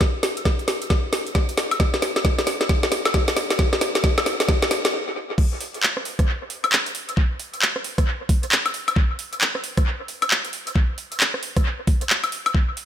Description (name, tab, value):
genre	UK garage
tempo	134 BPM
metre	4/4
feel	swing 62% on 16ths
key	none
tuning	none
part	electronic kick drum	drums	0.0-12.7 s	none	-20 LUFS	equal	overdrive, small room ambience
part	garage drum kit	drums	0.0-12.9 s	crash cymbal, handclaps, hi-hat, rim click, snare drum, woodblock	-21 LUFS	equal	overdrive, small room ambience, dub echo
room	moderate echo chamber reverb, RT60 1.4 s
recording	echo-heavy mix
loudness	-19 LUFS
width	side -10 dB against mid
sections	0.0-5.4 A section; 5.4-12.9 B section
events	build-up 0.0-5.4; drum fill 0.0-4.9; stop 4.9-5.4; drop 5.4-12.9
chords	none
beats	| 0.01 0.46 0.90 1.35 | 1.80 2.25 2.69 3.14 | 3.59 4.04 4.49 4.93 | 5.38 5.83 6.28 6.72 | 7.17 7.62 8.07 8.52 | 8.96 9.41 9.86 10.31 | 10.76 11.20 11.65 12.10 | 12.55